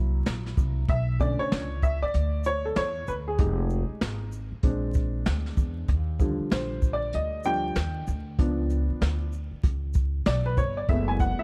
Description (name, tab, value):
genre	hip hop, jazz-hop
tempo	96 BPM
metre	4/4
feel	swing 61% on 16ths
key	unclear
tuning	A4 = 440 Hz
part	dark baby grand piano	accompaniment	0.0-11.4 s	D3 to G#5	-32 LUFS	equal	none
part	upright bass	bass	0.0-11.4 s	F1 to E2	-31 LUFS	equal	none
part	jazz brush drum kit	drums	0.3-11.4 s	hi-hat, kick drum, shaker, snare drum	-28 LUFS	equal	none
room	small room reverb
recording	dark, warm production, vinyl crackle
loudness	-27 LUFS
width	mono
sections	0.0-11.4 A section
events	grand piano solo 0.0-11.4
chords	0.0 C7#11; 0.9 Bm9; 3.4 Fm7; 4.6 A#7; 5.9 D#maj7; 8.4 C#7b9; 10.9 F#m11